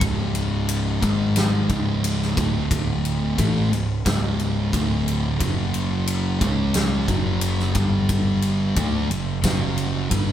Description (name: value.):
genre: stoner and doom metal.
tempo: 89 BPM.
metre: 4/4.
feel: straight.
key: unclear.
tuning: A4 = 438 Hz.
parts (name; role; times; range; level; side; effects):
thick fuzz guitar; riff; 0.0-10.3 s; C#2 to D4; -27 LUFS; left 3 dB; distortion.
thick fuzz guitar; riff; 0.0-10.3 s; C#2 to D4; -24 LUFS; right 3 dB; distortion.
picked electric bass; bass; 0.0-10.3 s; C#1 to D2; -26 LUFS; left 1 dB; overdrive.
big rock drum kit; drums; 0.0-10.3 s; kick drum, ride cymbal, snare drum; -25 LUFS; equal; none.
room: light reverb.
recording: band playing live in one room.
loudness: -19 LUFS.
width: side -10 dB against mid.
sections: 0.0-10.3 A section.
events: none.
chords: 0.0 C#5; 1.0 G#5; 1.7 C#5; 2.4 D5; 3.4 C#m; 4.7 D5; 5.4 F#5; 6.4 C#5; 7.1 F#5; 7.8 G5; 8.8 F#5.